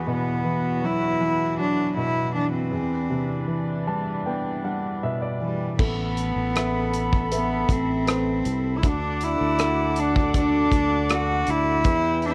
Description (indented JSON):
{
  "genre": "pop ballad",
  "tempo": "79 BPM",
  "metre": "4/4",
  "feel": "straight",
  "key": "unclear",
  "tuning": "A4 = 439 Hz",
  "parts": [
    { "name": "clear cello", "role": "melody", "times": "0.0-12.3 s", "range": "G3 to F#4", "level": "-27 LUFS", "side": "equal", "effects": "none" },
    { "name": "warm baby grand piano", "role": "accompaniment", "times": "0.0-12.3 s", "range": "E2 to A5", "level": "-30 LUFS", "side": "equal", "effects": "none" },
    { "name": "warm studio string section", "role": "sustained chords", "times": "0.0-12.3 s", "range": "E2 to E6", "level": "-34 LUFS", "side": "equal", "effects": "none" },
    { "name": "sustaining fretless electric bass", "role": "bass", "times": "5.8-12.3 s", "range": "A1 to E2", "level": "-30 LUFS", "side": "equal", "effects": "none" },
    { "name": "modern studio drum kit", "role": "drums", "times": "5.8-12.3 s", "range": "crash cymbal, hi-hat, kick drum, rim click", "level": "-27 LUFS", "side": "equal", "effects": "none" }
  ],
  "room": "light reverb, small room reverb",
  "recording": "worn, warbling old tape, cassette tape, warbly pitch drift",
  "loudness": "-24 LUFS",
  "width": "mono",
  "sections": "0.0-5.8 A section; 5.8-12.3 B section",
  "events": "grand piano fill 3.5-5.8",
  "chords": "0.0 Esus2; 2.7 Cmaj7/E; 5.8 Amadd9; 8.8 D",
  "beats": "0.46 1.21 1.97 | 2.72 3.48 4.25 5.02 | 5.79 6.55 7.32 8.08 | 8.84 9.59 10.35 11.10 | 11.85"
}